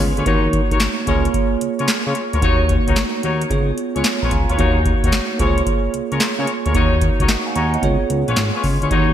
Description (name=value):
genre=R&B, new jack swing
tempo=111 BPM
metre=4/4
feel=swing 67% on 16ths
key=Eb minor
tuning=A4 = 442 Hz
part: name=bell-like tine electric piano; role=accompaniment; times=0.0-9.1 s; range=Bb3 to Bb5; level=-22 LUFS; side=right 5 dB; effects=wide subtle chorus
part: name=sweeping resonant pad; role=sustained chords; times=0.0-0.3, 8.9-9.1 s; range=Db3 to Gb4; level=-33 LUFS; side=left 1 dB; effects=none
part: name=smooth synth bass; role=bass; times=0.0-9.1 s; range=Ab1 to Db3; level=-20 LUFS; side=left 1 dB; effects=none
part: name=mellow horn section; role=stabs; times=0.2-9.1 s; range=Eb4 to Db5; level=-23 LUFS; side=left 4 dB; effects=digital delay
part: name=booming analog drum machine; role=drums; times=0.2-9.1 s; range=handclaps, hi-hat, kick drum, snare drum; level=-20 LUFS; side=equal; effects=gated reverb
room=moderate lush hall reverb, RT60 1.8 s, digital ambience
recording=bright 1980s-style digital production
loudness=-16 LUFS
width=side -10 dB against mid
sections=0.3-9.1 A section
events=none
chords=0.3 Ebm7; 1.1 Bbm7/Db; 2.4 Ebm7; 3.5 Db7; 4.6 Ebm7; 5.4 Bbm7/Db; 6.7 Ebm7; 7.8 Db7